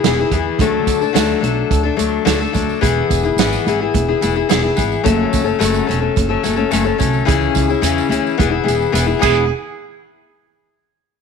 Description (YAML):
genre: folk rock and heartland rock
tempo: 108 BPM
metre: 4/4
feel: straight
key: E mixolydian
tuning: A4 = 436 Hz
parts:
  - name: picked steel-string acoustic guitar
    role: accompaniment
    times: 0.0-9.4 s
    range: F#2 to A4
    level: -16 LUFS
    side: left 9 dB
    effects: none
  - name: upright bass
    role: bass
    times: 0.0-9.5 s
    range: E1 to E2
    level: -20 LUFS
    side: right 2 dB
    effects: none
  - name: vintage drum kit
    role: drums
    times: 0.0-9.4 s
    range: crash cymbal, hi-hat, kick drum, snare drum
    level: -20 LUFS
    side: right 7 dB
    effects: none
  - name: tambourine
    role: percussion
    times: 0.6-9.5 s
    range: none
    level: -32 LUFS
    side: right 16 dB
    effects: none
  - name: bright upright piano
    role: second line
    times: 9.2-9.5 s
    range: G#4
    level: -18 LUFS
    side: right 14 dB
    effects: none
room: light reverb, small room reverb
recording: 1960s-style stereo with parts hard left and right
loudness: -14 LUFS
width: side -6 dB against mid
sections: 0.0-9.5 A section; 9.5-11.2 B section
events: none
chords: 0.0 E; 0.6 D; 2.8 E; 5.1 F#m; 7.3 C#m; 8.4 E; 9.5 N.C.